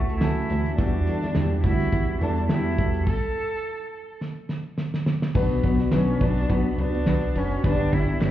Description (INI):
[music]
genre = piano-driven pop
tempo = 105 BPM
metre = 4/4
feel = swing 56% on 16ths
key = unclear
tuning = A4 = 444 Hz
[part]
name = rich cello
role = melody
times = 0.0-8.3 s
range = A3 to A4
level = -29 LUFS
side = equal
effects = none
[part]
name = warm baby grand piano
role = accompaniment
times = 0.0-8.3 s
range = G2 to C#5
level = -28 LUFS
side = left 4 dB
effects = none
[part]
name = fingerpicked steel-string acoustic guitar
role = riff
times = 0.0-8.3 s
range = G2 to G4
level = -31 LUFS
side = right 5 dB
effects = none
[part]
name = plucky analog bass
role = bass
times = 0.0-8.3 s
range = F#1 to E2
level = -25 LUFS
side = equal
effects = none
[part]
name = damped 70s drum kit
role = drums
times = 0.1-8.3 s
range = crash cymbal, hi-hat, kick drum, ride cymbal, snare drum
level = -26 LUFS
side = equal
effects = none
[part]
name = group handclap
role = percussion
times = 0.2-8.3 s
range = none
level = -48 LUFS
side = left 2 dB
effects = none
[sound]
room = moderate concert hall reverb, RT60 1.8 s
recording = heard muffled through a wall, club reverb, EQ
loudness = -21 LUFS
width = side -12 dB against mid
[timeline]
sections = 0.0-5.4 A section; 5.4-8.3 B section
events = stop 3.1-5.4; drum fill 4.2-5.4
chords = 0.0 A6/C#; 0.8 Emadd9; 3.1 N.C.; 5.4 Bm; 7.6 G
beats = 0.21 | 0.78 1.36 1.93 2.50 | 3.07 3.64 4.21 4.78 | 5.36 5.93 6.50 7.07 | 7.64 8.21